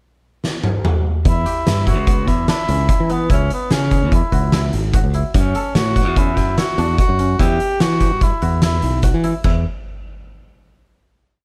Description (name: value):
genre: progressive instrumental, band music in an uneven meter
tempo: 146 BPM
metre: 5/4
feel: straight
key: E dorian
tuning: A4 = 444 Hz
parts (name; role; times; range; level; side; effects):
- oversized low-tuned drum kit; drums; 0.4-9.5 s; crash cymbal, hi-hat, kick drum, snare drum, toms; -20 LUFS; equal; none
- warm tenor saxophone; melody; 1.3-9.0 s; B3 to G4; -24 LUFS; equal; none
- modern bright fingered electric bass; bass; 1.3-9.6 s; G#1 to E3; -21 LUFS; equal; none
- koto; arpeggios; 1.5-9.7 s; B3 to A4; -31 LUFS; equal; none
room: light reverb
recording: dark, warm production, faint mains hum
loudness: -17 LUFS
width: mono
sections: 0.0-1.3 pickup bar; 1.3-9.4 A section; 9.4-11.4 final note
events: drum fill 0.4-1.3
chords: 0.0 N.C.; 1.3 Em; 3.3 C#m; 5.3 F#m; 7.4 Em; 9.4 N.C.